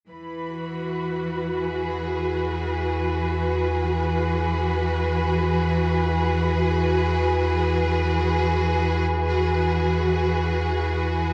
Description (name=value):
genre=ambient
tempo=free time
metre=none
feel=none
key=E major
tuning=A4 = 440 Hz
part: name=clear studio string section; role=sustained chords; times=0.1-11.3 s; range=E3 to G#4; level=-26 LUFS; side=equal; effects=none
part: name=warm sub bass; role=bass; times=0.1-11.3 s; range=E2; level=-28 LUFS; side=equal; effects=none
part: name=dark symphonic violin section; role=texture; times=0.1-11.3 s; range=B4 to B5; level=-33 LUFS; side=equal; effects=shimmer reverb
room=wet concert hall reverb, RT60 2.4 s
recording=worn, warbling old tape, cassette tape, warbly pitch drift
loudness=-23 LUFS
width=mono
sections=0.1-11.3 A section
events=none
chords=0.1 Eadd9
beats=free time